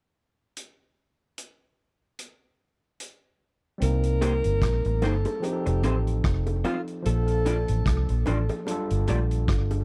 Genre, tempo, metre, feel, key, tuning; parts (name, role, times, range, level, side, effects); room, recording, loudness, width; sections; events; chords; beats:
lovers rock reggae; 74 BPM; 4/4; swing 56% on 16ths; C dorian; A4 = 439 Hz
vintage drum kit; drums; 0.6-9.8 s; hi-hat, kick drum, rim click; -32 LUFS; equal
warm alto saxophone; melody; 3.8-8.2 s; F4 to Bb4; -34 LUFS; equal; tape echo
overdriven tine electric piano; accompaniment; 3.8-9.8 s; F3 to A4; -35 LUFS; equal; slapback echo
vintage muted fingered electric bass; bass; 3.8-9.8 s; F1 to C2; -27 LUFS; equal
electric guitar through a small old amp; stabs; 4.2-9.2 s; A3 to D5; -33 LUFS; equal; analog chorus
bongos; percussion; 4.2-9.8 s; -38 LUFS; equal; slapback echo
little or no reverb; dry, close 1970s-style studio recording; -25 LUFS; mono
0.6-3.8 A section; 3.8-9.8 B section
0.6 N.C.; 3.8 Cm7; 5.4 F7; 7.1 Bbmaj7; 8.7 Gm9
| 0.56 1.38 2.19 3.00 | 3.81 4.62 5.43 6.24 | 7.05 7.86 8.67 9.48